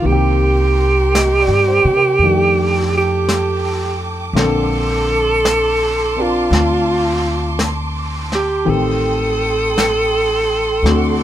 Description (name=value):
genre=jazz ballad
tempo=56 BPM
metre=4/4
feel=swing 68% on 8ths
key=unclear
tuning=A4 = 442 Hz
part: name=breathy alto saxophone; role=melody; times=0.0-11.2 s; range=F4 to A4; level=-16 LUFS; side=right 2 dB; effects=none
part: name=warm grand piano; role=accompaniment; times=0.0-11.2 s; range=D3 to Eb5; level=-23 LUFS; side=left 2 dB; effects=none
part: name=warm symphonic string section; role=sustained chords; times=0.0-11.2 s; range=A4 to Eb6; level=-24 LUFS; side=right 2 dB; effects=none
part: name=upright bass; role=bass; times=0.0-11.2 s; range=A1 to C3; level=-19 LUFS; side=left 1 dB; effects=none
part: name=vintage brush drum kit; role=drums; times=0.1-11.2 s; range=brushed snare drum, hi-hat, snare drum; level=-24 LUFS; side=left 1 dB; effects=none
room=light reverb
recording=none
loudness=-13 LUFS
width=side -12 dB against mid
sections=0.0-11.2 A section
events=none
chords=0.1 Cm7; 2.2 F13; 4.4 Bbmaj9; 8.7 Am7b5